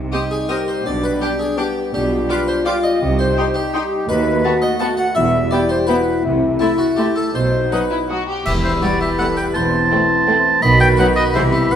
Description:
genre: cinematic, playful, whimsical film cue.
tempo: 166 BPM.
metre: 3/4.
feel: straight.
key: C minor, E minor from 4.1 s.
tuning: A4 = 440 Hz.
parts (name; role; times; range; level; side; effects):
mellow French horn section; sustained chords; 0.0-11.8 s; F#3 to F#4; -23 LUFS; left 5 dB; none.
warm studio cello section; bass; 0.0-11.8 s; D#2 to C3; -25 LUFS; right 3 dB; none.
warm studio double bass section; bass; 0.0-11.8 s; E1 to D#2; -23 LUFS; right 2 dB; none.
harpsichord; melody; 0.1-11.8 s; E4 to F#5; -25 LUFS; left 1 dB; none.
warm studio violin section; melody; 0.1-11.4 s; D#4 to Eb6; -33 LUFS; left 4 dB; none.
clear clarinet; second line; 0.1-11.8 s; E4 to F#5; -25 LUFS; left 2 dB; none.
clear oboe; second line; 0.1-11.8 s; C5 to B5; -20 LUFS; right 2 dB; none.
rich studio violin section; second line; 0.1-11.4 s; B3 to G4; -29 LUFS; left 3 dB; none.
silver concert flute; second line; 0.1-11.8 s; B5 to D#6; -28 LUFS; left 1 dB; none.
dark bassoon; accompaniment; 0.1-11.8 s; D#3 to G4; -23 LUFS; right 1 dB; none.
warm studio viola section; accompaniment; 0.1-11.4 s; E3 to F4; -26 LUFS; right 2 dB; none.
clash cymbals and concert bass drum; percussion; 8.5-9.2 s; none; -27 LUFS; equal; none.
room: wet scoring stage reverb, RT60 1.8 s.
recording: none.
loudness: -15 LUFS.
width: side -9 dB against mid.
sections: 0.0-8.5 A section; 8.5-11.8 B section.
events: band accent 8.5-8.8.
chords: 0.0 Cm; 0.9 G/B; 1.9 G7/B; 3.0 Cm; 4.1 B7/D#; 5.2 Em; 6.2 Am/C; 7.3 B; 8.5 Em; 9.6 Am/E; 10.6 B; 11.4 Cmaj7.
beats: 0.13 0.49 | 0.86 1.22 1.58 | 1.94 2.30 2.66 | 3.02 3.38 3.73 | 4.09 4.45 4.80 | 5.16 5.52 5.88 | 6.24 6.60 6.97 | 7.34 7.72 8.09 | 8.46 8.83 9.19 | 9.55 9.91 10.27 | 10.63 10.99 11.35 | 11.72.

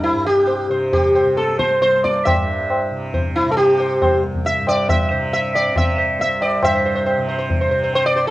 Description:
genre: indian classical, Hindustani.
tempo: 137 BPM.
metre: 5/4.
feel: straight.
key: unclear.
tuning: A4 = 441 Hz.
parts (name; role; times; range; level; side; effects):
sitar; melody; 0.0-8.3 s; E4 to E5; -16 LUFS; equal; cassette tape.
tanpura; drone; 0.0-8.3 s; C2 to C3; -26 LUFS; right 1 dB; cassette tape.
tabla; percussion; 0.0-8.1 s; none; -22 LUFS; equal; none.
room: small room reverb.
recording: home recording on cassette.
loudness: -15 LUFS.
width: side -16 dB against mid.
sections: 0.0-6.6 A section; 6.6-8.3 B section.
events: none.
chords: none.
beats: | 0.04 0.48 0.93 1.37 1.81 | 2.25 2.69 3.13 3.57 4.01 | 4.45 4.89 5.33 5.76 6.20 | 6.63 7.07 7.50 7.93.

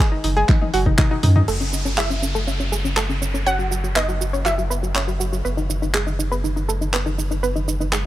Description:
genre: progressive house.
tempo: 121 BPM.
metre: 4/4.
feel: straight.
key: F# dorian.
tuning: A4 = 445 Hz.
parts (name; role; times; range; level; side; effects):
wide unison pluck; melody; 0.0-5.2 s; B4 to F#5; -27 LUFS; right 1 dB; sidechain pumping, digital delay.
analog pluck; arpeggios; 0.0-8.0 s; C#4 to C#5; -24 LUFS; right 1 dB; chorus, sidechain pumping, tape echo.
saturated sub bass; bass; 0.2-8.1 s; F#1 to F#2; -22 LUFS; equal; sidechain pumping.
deep house drum kit; drums; 0.2-8.0 s; crash cymbal, handclaps, hi-hat, shaker, toms; -25 LUFS; right 1 dB; overdrive, sidechain pumping on hats, sidechain pumping on toms, sidechain pumping on cymbals, sidechain pumping on perc.
electronic kick drum; drums; 0.5-1.1 s; none; -16 LUFS; equal; overdrive.
downlifter; sound effects; 1.5-5.4 s; none; -32 LUFS; equal; none.
room: digital ambience.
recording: none.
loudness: -18 LUFS.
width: side -14 dB against mid.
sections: 0.0-1.5 A section; 1.5-8.1 B section.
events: drum fill 0.5-1.5.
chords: 0.0 F#sus4; 1.5 F#5; 5.4 F#sus2.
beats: 0.49 0.98 | 1.48 1.98 2.47 2.97 | 3.46 3.96 4.46 4.95 | 5.45 5.94 6.44 6.93 | 7.43 7.93.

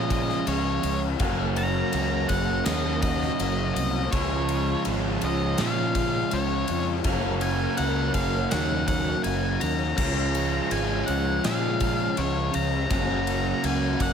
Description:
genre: rock, shoegaze and dream pop.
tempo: 82 BPM.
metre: 4/4.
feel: straight.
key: Db major.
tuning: A4 = 435 Hz.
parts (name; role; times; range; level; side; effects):
octave-fuzz lead guitar; melody; 0.0-14.1 s; Db5 to Bb5; -30 LUFS; left 2 dB; distortion, tape echo.
string machine, full ensemble; sustained chords; 0.0-14.1 s; F3 to F5; -35 LUFS; equal; ensemble chorus.
overdriven electric guitar; riff; 0.0-14.1 s; Gb2 to Gb4; -30 LUFS; left 11 dB; lush chorus.
overdriven electric guitar; riff; 0.0-14.1 s; Gb2 to Db4; -29 LUFS; right 10 dB; reverse reverb.
fuzz fingered electric bass; bass; 0.0-14.1 s; Gb1 to Bb2; -28 LUFS; equal; overdrive.
gated 80s drum kit; drums; 0.1-14.1 s; crash cymbal, kick drum, ride cymbal, snare drum; -31 LUFS; left 1 dB; none.
room: light reverb.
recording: none.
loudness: -23 LUFS.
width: side -7 dB against mid.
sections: 0.0-14.1 A section.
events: none.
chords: 0.0 Db; 1.2 Gb; 4.1 Db; 7.0 Gb; 10.0 Db; 12.9 Gb.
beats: 0.47 | 1.20 1.94 2.67 3.40 | 4.13 4.86 5.59 6.32 | 7.05 7.78 8.51 9.24 | 9.98 10.71 11.44 12.17 | 12.90 13.64.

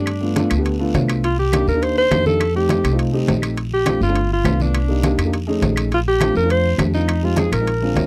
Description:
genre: Afro-Cuban jazz.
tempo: 205 BPM.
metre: 4/4.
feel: straight.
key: Bb major.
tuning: A4 = 436 Hz.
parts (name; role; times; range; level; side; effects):
warm alto saxophone; melody; 0.0-8.1 s; D4 to C5; -22 LUFS; equal; none.
dark upright piano; accompaniment; 0.0-8.1 s; Ab3 to G#4; -25 LUFS; equal; none.
upright bass; bass; 0.0-8.1 s; G1 to G2; -23 LUFS; equal; none.
claves; percussion; 0.1-7.7 s; none; -35 LUFS; equal; none.
congas; percussion; 0.1-8.1 s; none; -27 LUFS; equal; none.
guiro; percussion; 0.1-8.1 s; none; -40 LUFS; equal; none.
timbales; percussion; 0.1-8.1 s; none; -28 LUFS; equal; none.
room: little or no reverb.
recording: dry, close 1970s-style studio recording.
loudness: -18 LUFS.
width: mono.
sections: 0.0-8.1 A section.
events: none.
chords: 0.1 G7; 1.2 Cm9; 2.4 F9; 3.6 Bbmaj9; 4.2 G7; 4.7 Cm7; 5.3 F7alt; 5.9 Bbmaj9; 7.1 Fm7.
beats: | 0.07 0.36 0.66 0.95 | 1.24 1.53 1.82 2.12 | 2.41 2.70 2.99 3.28 | 3.58 3.87 4.16 4.45 | 4.75 5.04 5.33 5.62 | 5.91 6.21 6.50 6.79 | 7.08 7.38 7.67 7.96.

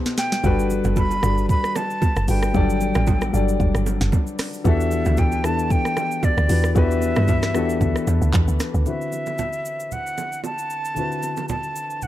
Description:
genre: amapiano.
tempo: 114 BPM.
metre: 4/4.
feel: swing 55% on 16ths.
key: unclear.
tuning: A4 = 440 Hz.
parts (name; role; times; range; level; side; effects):
dark baby grand piano; accompaniment; 0.0-12.1 s; B2 to D#5; -24 LUFS; left 4 dB; none.
smooth R&B drum kit; drums; 0.1-12.1 s; handclaps, hi-hat, kick drum, rim click, shaker, snare drum; -23 LUFS; right 1 dB; none.
breathy silver concert flute; melody; 0.2-12.1 s; D5 to B5; -26 LUFS; right 1 dB; ping-pong delay.
woody log drum bass; bass; 0.4-8.9 s; F#1 to G2; -21 LUFS; right 1 dB; none.
congas and bongos; percussion; 0.4-12.1 s; none; -31 LUFS; right 6 dB; none.
room: small room ambience.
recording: dark, warm production.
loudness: -18 LUFS.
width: side -14 dB against mid.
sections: 0.0-8.9 A section; 8.9-12.1 B section.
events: drop 0.0-8.9; drum fill 0.0-0.4.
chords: 0.4 Gmaj9; 4.7 Em11; 8.9 D13.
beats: | 0.44 0.97 1.49 2.02 | 2.54 3.07 3.60 4.12 | 4.65 5.18 5.70 6.23 | 6.76 7.28 7.81 8.34 | 8.86 9.39 9.91 10.44 | 10.97 11.49 12.02.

